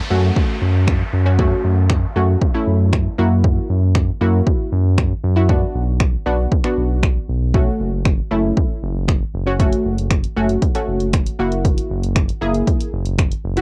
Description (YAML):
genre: dance-pop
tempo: 117 BPM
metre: 4/4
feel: straight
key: F# minor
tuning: A4 = 440 Hz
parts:
  - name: downlifter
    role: sound effects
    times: 0.0-3.4 s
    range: none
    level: -34 LUFS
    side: equal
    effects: none
  - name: analog pluck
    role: accompaniment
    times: 0.1-13.6 s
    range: A3 to G#4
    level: -24 LUFS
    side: equal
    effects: chorus, sidechain pumping
  - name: round analog bass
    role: bass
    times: 0.1-13.6 s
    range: F#1 to F#2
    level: -20 LUFS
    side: equal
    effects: sidechain pumping
  - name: punchy analog drum machine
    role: drums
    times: 0.4-13.6 s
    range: finger snaps, hi-hat, kick drum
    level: -20 LUFS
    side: equal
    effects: cassette tape
room: light reverb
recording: home recording on cassette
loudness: -18 LUFS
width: mono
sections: 0.0-13.6 A section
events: none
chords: 0.0 F#m; 3.2 F#7; 5.5 Bm; 7.5 F#m; 11.4 F#7